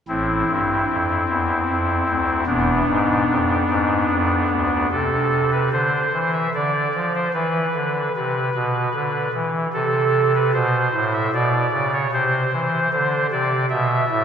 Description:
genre	classical, chorale-style piece for pipe organ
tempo	75 BPM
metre	3/4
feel	rubato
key	A minor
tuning	A4 = 438 Hz
part	pipe organ, soft reed	solo	0.1-14.2 s	E1 to E5	-18 LUFS	equal	none
room	wet church reverb, RT60 3.2 s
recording	recorded in a church or concert hall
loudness	-18 LUFS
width	side -8 dB against mid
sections	0.1-4.9 A section; 4.9-14.2 B section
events	none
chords	0.1 Am; 2.5 E7; 4.9 C69; 6.5 Dm7; 7.3 E5; 9.7 Am/C; 11.3 Bmadd9; 12.1 Am/C (rootless)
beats	| 0.10 0.90 1.70 | 2.49 3.29 4.11 | 4.93 5.73 6.53 | 7.34 8.14 8.94 | 9.74 10.54 11.35 | 12.14 12.93 13.72

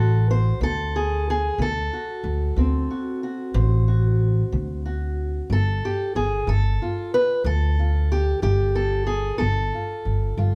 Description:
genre	acoustic country blues, solo or duo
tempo	61 BPM (dotted quarters)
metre	12/8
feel	straight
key	D mixolydian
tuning	A4 = 440 Hz
part	fingerpicked steel-string acoustic guitar	melody	0.0-10.6 s	D3 to C5	-27 LUFS	equal	none
part	upright bass	bass	0.0-10.6 s	G1 to D2	-24 LUFS	equal	none
room	moderate small room reverb, RT60 0.5 s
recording	heard from further back in the room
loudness	-23 LUFS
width	mono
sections	0.0-10.6 A section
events	none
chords	0.0 D7; 5.5 G7(no3)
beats	0.61 | 1.59 2.57 3.55 4.52 | 5.50 6.48 7.46 8.43 | 9.41 10.38

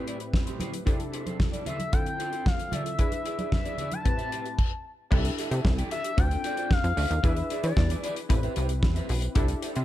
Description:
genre	early-eighties boogie funk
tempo	113 BPM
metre	4/4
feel	straight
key	unclear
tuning	A4 = 439 Hz
part	funky polysynth comp	accompaniment	0.0-9.8 s	A2 to B4	-35 LUFS	left 2 dB	chorus
part	electric guitar at the edge of break-up	riff	0.0-9.8 s	E4 to G5	-37 LUFS	right 3 dB	wide subtle chorus
part	damped 70s drum kit	drums	0.1-9.8 s	crash cymbal, hi-hat, kick drum, snare drum	-26 LUFS	equal	none
part	congas	percussion	0.6-4.0 s	none	-38 LUFS	right 3 dB	none
part	expressive synth lead	melody	1.7-8.1 s	D5 to A5	-32 LUFS	left 3 dB	chorus, slapback echo
part	plucky analog bass	bass	5.1-9.8 s	A1 to E3	-27 LUFS	equal	none
room	studio reverb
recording	none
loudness	-25 LUFS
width	side -14 dB against mid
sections	0.0-5.1 A section; 5.1-9.8 B section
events	none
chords	0.0 Am7; 0.9 C6; 1.9 Dm7; 3.0 E7; 4.1 Am7; 5.1 C6; 6.2 Dm7; 7.2 E7; 8.3 Am7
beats	0.33 | 0.86 1.40 1.93 2.46 | 2.99 3.52 4.05 4.58 | 5.11 5.64 6.17 6.71 | 7.24 7.77 8.30 8.83 | 9.36

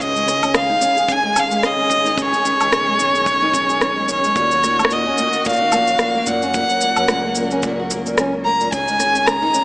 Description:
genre	folktronica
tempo	110 BPM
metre	4/4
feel	swing 56% on 16ths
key	Db mixolydian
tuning	A4 = 441 Hz
part	rich violin	melody	0.0-9.6 s	Db5 to Bb5	-16 LUFS	equal	none
part	dark string quartet	sustained chords	0.0-9.6 s	Eb3 to Bb4	-26 LUFS	equal	none
part	flamenco guitar	arpeggios	0.0-9.6 s	Bb2 to Ab4	-23 LUFS	equal	none
part	round analog bass	bass	0.0-9.5 s	Ab1 to Gb2	-31 LUFS	equal	tube saturation
part	electronic shaker, rim click and woodblock	drums	0.0-9.6 s	none	-21 LUFS	equal	none
part	kick drum	drums	0.0-8.8 s	none	-31 LUFS	equal	none
room	light reverb, small room ambience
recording	small speaker sound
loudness	-14 LUFS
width	side -24 dB against mid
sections	0.0-9.6 A section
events	none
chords	0.0 Dbsus2; 4.4 Ebm7; 6.5 Gb; 8.7 Dbsus2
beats	| 0.00 0.54 1.09 1.63 | 2.18 2.73 3.27 3.82 | 4.36 4.91 5.45 6.00 | 6.54 7.09 7.63 8.18 | 8.72 9.27

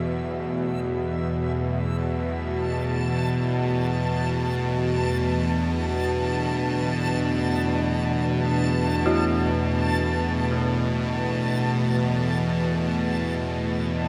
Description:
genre	dark ambient drone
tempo	free time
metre	none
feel	none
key	unclear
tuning	A4 = 443 Hz
part	deep dark ambient pad	sustained chords	0.0-14.1 s	E3 to F#4	-30 LUFS	equal	chorus, built-in reverb
part	bowed-like drone	drone	0.0-14.1 s	E2 to B2	-26 LUFS	equal	built-in reverb
part	backwards swelling texture	texture	0.0-14.1 s	E5 to A5	-35 LUFS	equal	built-in reverb
part	dark detuned synth bell	arpeggios	9.1-14.1 s	E4 to F#4	-33 LUFS	equal	chorus, tape echo
room	wet echo chamber reverb, RT60 2.4 s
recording	echo-heavy mix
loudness	-24 LUFS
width	mono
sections	0.0-14.1 A section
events	fade-in on ambient pad 0.0-14.1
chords	0.0 Esus2; 1.3 Bm7/E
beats	free time

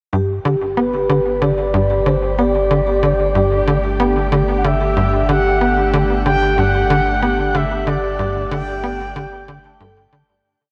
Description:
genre	ambient, sequencer-driven space music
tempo	93 BPM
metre	4/4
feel	straight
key	G major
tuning	A4 = 439 Hz
part	lush unison pad	sustained chords	1.9-10.5 s	A3 to G4	-29 LUFS	equal	chorus
part	vibraphone with soft mallets	arpeggios	0.1-10.4 s	G4 to A5	-24 LUFS	equal	analog delay
part	tight sequencer bass	riff	0.1-10.2 s	G2 to B3	-22 LUFS	equal	lush chorus, analog delay
part	warm sub bass	bass	0.1-10.4 s	G1	-25 LUFS	equal	none
part	bubbling stepped-filter texture	texture	0.1-10.5 s	G4	-32 LUFS	equal	chorus, built-in reverb
part	expressive synth lead	melody	0.8-10.1 s	B4 to G5	-22 LUFS	equal	chorus, analog delay
room	moderate shimmer reverb, RT60 6.2 s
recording	none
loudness	-17 LUFS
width	mono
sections	0.1-10.5 A section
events	fade-in on analog synth pad 0.1-10.5; fade-out 7.0-10.5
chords	0.1 Gsus2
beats	| 0.13 0.77 1.42 2.06 | 2.71 3.35 4.00 4.64 | 5.29 5.93 6.58 7.22 | 7.87 8.52 9.16 9.81

